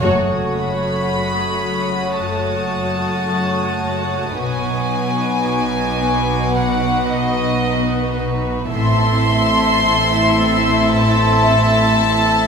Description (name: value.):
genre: cinematic, suspense film score.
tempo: 55 BPM.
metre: 4/4.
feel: straight.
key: F# dorian.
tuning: A4 = 440 Hz.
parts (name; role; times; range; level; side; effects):
warm symphonic violin section; second line; 0.0-12.5 s; F#4 to E5; -21 LUFS; equal; none.
dark symphonic viola section; accompaniment; 0.0-12.5 s; A3 to F#4; -23 LUFS; right 1 dB; none.
buzzing marimba with soft mallets; riff; 0.0-12.3 s; F#2 to B3; -25 LUFS; left 1 dB; none.
rich symphonic cello section; bass; 0.0-12.5 s; F#2 to B2; -24 LUFS; right 3 dB; none.
warm symphonic double bass section; bass; 0.0-12.5 s; F#1 to B1; -25 LUFS; right 2 dB; none.
vibraphone with soft mallets; texture; 0.0-12.5 s; A4 to C#6; -28 LUFS; equal; none.
warm symphonic violin section; texture; 0.0-12.5 s; F#5 to B6; -29 LUFS; left 4 dB; none.
warm symphonic violin section; melody; 0.6-12.5 s; D#5 to C6; -20 LUFS; left 2 dB; none.
room: wet scoring stage reverb, RT60 1.7 s.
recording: minimal, uncompressed stereo recording.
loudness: -15 LUFS.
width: side -6 dB against mid.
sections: 0.0-12.5 A section.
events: band accent 0.0-1.1.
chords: 0.0 F#m; 4.4 B; 8.7 Am.